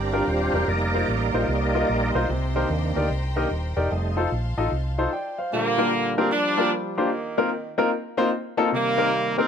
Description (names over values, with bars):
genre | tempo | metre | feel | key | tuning
gospel | 149 BPM | 4/4 | swing 64% on 8ths | Bb major | A4 = 439 Hz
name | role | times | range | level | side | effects
clear studio string section | sustained chords | 0.0-5.5 s | C5 to C6 | -36 LUFS | left 2 dB | none
overdriven tonewheel organ | sustained chords | 0.0-4.2 s | Eb3 to D5 | -26 LUFS | right 2 dB | fast rotary speaker, chorus vibrato
hollow-body short-scale fingered electric bass | bass | 0.0-5.1 s | Eb1 to Eb2 | -26 LUFS | equal | none
clear concert grand piano | accompaniment | 0.1-9.5 s | Bb2 to G5 | -24 LUFS | left 2 dB | none
clear horn section | melody | 5.5-9.5 s | D3 to D4 | -23 LUFS | right 2 dB | none
room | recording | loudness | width
moderate plate reverb, RT60 1.5 s, small room ambience | none | -21 LUFS | side -7 dB against mid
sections
0.0-5.5 A section; 5.5-9.5 B section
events
tonewheel organ solo 0.0-5.5; break 5.1-5.5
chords
0.0 Bb6; 0.7 F7sus4; 2.3 Cm7; 3.9 F7; 5.5 Bb6; 7.1 F7sus4; 8.7 Cm7